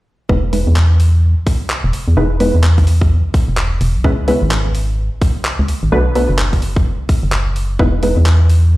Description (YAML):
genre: UK garage, two-step garage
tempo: 128 BPM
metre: 4/4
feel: swing 61% on 16ths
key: E major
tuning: A4 = 440 Hz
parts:
  - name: punchy chord stab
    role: stabs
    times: 0.3-8.8 s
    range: G#3 to B4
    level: -18 LUFS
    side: equal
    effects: chorus, vintage 12-bit sampler grit, digital delay
  - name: organ-like FM bass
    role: bass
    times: 0.3-8.8 s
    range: E1 to E2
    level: -13 LUFS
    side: equal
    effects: none
  - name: electronic kick drum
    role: drums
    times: 0.3-7.9 s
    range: none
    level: -14 LUFS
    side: equal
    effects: studio reverb
  - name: breakbeat sampler-style drum kit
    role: drums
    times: 0.5-8.6 s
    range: handclaps, hi-hat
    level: -23 LUFS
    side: equal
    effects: studio reverb
room: light reverb, digital ambience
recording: played on a big sound system in a bare room, large studio reverb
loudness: -12 LUFS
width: side -18 dB against mid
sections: 0.3-8.8 A section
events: filter sweep on FM bass 0.3-8.8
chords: 0.3 Emaj7; 4.0 C#m7; 5.9 Bm7; 7.8 Emaj7